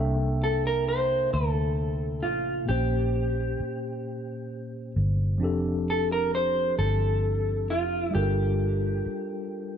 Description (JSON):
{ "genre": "slow six-eight R&B", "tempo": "44 BPM (dotted quarters)", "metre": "6/8", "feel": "straight", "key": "F major", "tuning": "A4 = 441 Hz", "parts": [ { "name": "mellow tine electric piano", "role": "accompaniment", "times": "0.0-9.8 s", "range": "Bb2 to G5", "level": "-31 LUFS", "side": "left 1 dB", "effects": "medium stereo tremolo" }, { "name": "vintage muted fingered electric bass", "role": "bass", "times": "0.0-9.1 s", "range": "F1 to D2", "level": "-27 LUFS", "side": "equal", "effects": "none" }, { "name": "electric guitar at the edge of break-up", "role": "melody", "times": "0.4-9.8 s", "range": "F4 to C5", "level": "-28 LUFS", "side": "right 1 dB", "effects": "slapback echo" } ], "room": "light reverb, digital ambience", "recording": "none", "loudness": "-24 LUFS", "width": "side -8 dB against mid", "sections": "0.0-9.8 A section", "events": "none", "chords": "0.0 C13; 2.7 Bbm6; 5.4 F69; 8.1 Gm9" }